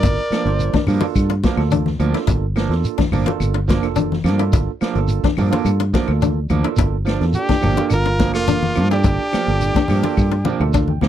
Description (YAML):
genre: afrobeat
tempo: 106 BPM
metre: 4/4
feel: straight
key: G dorian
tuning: A4 = 443 Hz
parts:
  - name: brilliant trumpet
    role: melody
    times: 0.0-0.9, 7.4-10.7 s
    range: F4 to D5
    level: -23 LUFS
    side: equal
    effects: none
  - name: growling alto saxophone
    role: second line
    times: 0.0-0.9, 7.4-10.7 s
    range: Bb3 to Bb4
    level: -26 LUFS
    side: right 3 dB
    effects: none
  - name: barky tine electric piano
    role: accompaniment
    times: 0.0-11.1 s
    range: Bb3 to G5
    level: -26 LUFS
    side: right 20 dB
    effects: overdrive
  - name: koto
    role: arpeggios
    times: 0.0-10.9 s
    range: D4 to F4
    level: -24 LUFS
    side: left 13 dB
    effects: none
  - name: fingered electric bass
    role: bass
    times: 0.0-11.1 s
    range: F1 to G2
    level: -19 LUFS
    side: equal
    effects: none
  - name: vintage drum kit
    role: drums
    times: 0.0-11.1 s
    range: hi-hat, kick drum, snare drum, toms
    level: -21 LUFS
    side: equal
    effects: none
  - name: congas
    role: percussion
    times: 0.0-11.1 s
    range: none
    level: -23 LUFS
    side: left 4 dB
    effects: none
  - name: shekere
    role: percussion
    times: 0.0-11.1 s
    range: none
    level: -23 LUFS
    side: right 2 dB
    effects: none
  - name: electric guitar at the edge of break-up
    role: stabs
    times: 0.3-11.1 s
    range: F3 to D4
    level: -23 LUFS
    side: right 9 dB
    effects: none
  - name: claves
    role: percussion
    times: 0.3-11.1 s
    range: none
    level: -36 LUFS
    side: left 22 dB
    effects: none
room: little or no reverb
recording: dry, close 1970s-style studio recording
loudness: -16 LUFS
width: side -11 dB against mid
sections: 0.0-11.1 A section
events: drum fill 10.2-11.1; tine electric piano fill 10.2-11.1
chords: 0.0 Gm7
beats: | 0.03 0.59 1.15 1.72 | 2.28 2.84 3.41 3.97 | 4.53 5.10 5.66 6.22 | 6.79 7.35 7.91 8.48 | 9.04 9.61 10.17 10.73